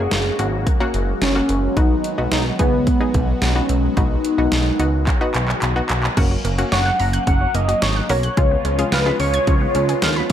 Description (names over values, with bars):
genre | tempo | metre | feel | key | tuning
synth-pop | 109 BPM | 4/4 | straight | unclear | A4 = 440 Hz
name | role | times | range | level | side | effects
warm velvety synth lead | melody | 0.0-10.3 s | B3 to F#5 | -21 LUFS | equal | chorus, slapback echo
analog pluck | accompaniment | 0.0-9.7 s | G#3 to G#4 | -26 LUFS | left 2 dB | chorus
phased analog pad | sustained chords | 0.0-10.3 s | C#3 to F#4 | -26 LUFS | left 1 dB | phaser, chorus
chorused synth bass | bass | 0.0-10.3 s | F#1 to D#2 | -21 LUFS | equal | none
pop drum kit | drums | 0.1-10.3 s | crash cymbal, handclaps, hi-hat, kick drum, snare drum | -21 LUFS | equal | none
analog pluck | arpeggios | 6.2-10.3 s | C#3 to G#6 | -27 LUFS | right 5 dB | chorus, slapback echo
room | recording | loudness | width
light reverb, digital ambience | none | -16 LUFS | side -10 dB against mid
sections
0.0-6.2 A section; 6.2-10.3 B section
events
drum fill 5.1-6.2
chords
0.0 F#add9; 1.8 B6; 6.2 F#; 8.4 C#7